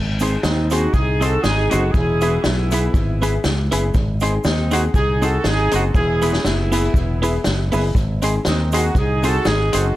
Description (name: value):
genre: ska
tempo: 120 BPM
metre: 4/4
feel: swing 56% on 8ths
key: unclear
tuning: A4 = 441 Hz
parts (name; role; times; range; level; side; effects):
- fingered electric bass; bass; 0.0-9.9 s; E1 to D#2; -20 LUFS; equal; none
- clean electric guitar; accompaniment; 0.2-9.8 s; B3 to B#4; -26 LUFS; right 4 dB; tape echo
- clear upright piano; stabs; 0.2-9.9 s; B3 to G#4; -26 LUFS; left 4 dB; none
- vintage drum kit; drums; 0.2-9.8 s; hi-hat, kick drum, snare drum; -22 LUFS; equal; tape echo
- cabasa; percussion; 0.2-9.8 s; none; -40 LUFS; right 6 dB; tape echo
- mellow horn section; melody; 0.4-9.9 s; B3 to A4; -22 LUFS; right 1 dB; tape echo
room: light reverb, studio reverb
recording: none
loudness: -16 LUFS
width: side -15 dB against mid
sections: 0.0-10.0 A section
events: none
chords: 0.0 G#; 1.9 E; 3.9 G#; 5.9 E; 7.9 G#